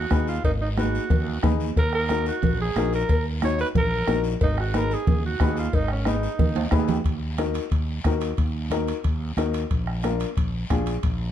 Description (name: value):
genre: latin, cumbia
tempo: 182 BPM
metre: 4/4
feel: straight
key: Eb harmonic minor from 7.1 s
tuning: A4 = 439 Hz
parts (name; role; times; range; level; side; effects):
- growling alto saxophone; melody; 0.0-6.7 s; Db4 to Db5; -28 LUFS; right 3 dB; none
- fretless electric bass; bass; 0.0-11.3 s; Ab1 to Eb2; -27 LUFS; right 1 dB; none
- warm upright piano; accompaniment; 0.1-10.9 s; D4 to Db5; -28 LUFS; left 8 dB; none
- bombo; percussion; 0.1-11.2 s; none; -24 LUFS; left 1 dB; none
- congas; percussion; 0.1-11.2 s; none; -29 LUFS; right 4 dB; none
- guiro; percussion; 0.1-11.3 s; none; -42 LUFS; left 5 dB; none
- cowbell and timbales; percussion; 0.4-11.2 s; none; -35 LUFS; right 2 dB; none
room: light reverb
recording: dark, warm production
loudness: -21 LUFS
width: side -10 dB against mid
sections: 0.0-7.1 A section; 7.1-11.3 B section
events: drum fill 6.6-7.1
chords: 0.0 Abm; 1.8 Ebm; 4.4 Abm; 7.1 Ebm; 9.7 Bb7